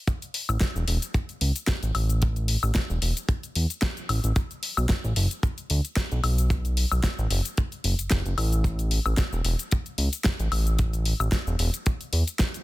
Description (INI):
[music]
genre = nu-disco, nu disco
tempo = 112 BPM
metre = 4/4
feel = swing 55% on 16ths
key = A major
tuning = A4 = 440 Hz
[part]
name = kick drum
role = drums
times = 0.1-12.5 s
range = none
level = -24 LUFS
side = equal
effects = small room ambience
[part]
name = pop drum kit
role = drums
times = 0.1-12.6 s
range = hi-hat, shaker, snare drum, woodblock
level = -29 LUFS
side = left 2 dB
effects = small room ambience
[part]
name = fat analog bass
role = bass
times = 0.5-12.2 s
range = E1 to E2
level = -24 LUFS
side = equal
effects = sidechain pumping
[sound]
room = small room ambience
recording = dense, heavily limited modern master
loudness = -23 LUFS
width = side -18 dB against mid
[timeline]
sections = 0.0-12.6 A section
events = none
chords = none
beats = | 0.07 0.61 1.15 1.68 | 2.22 2.75 3.29 3.83 | 4.36 4.90 5.43 5.97 | 6.50 7.04 7.58 8.11 | 8.65 9.18 9.72 10.25 | 10.79 11.32 11.86 12.40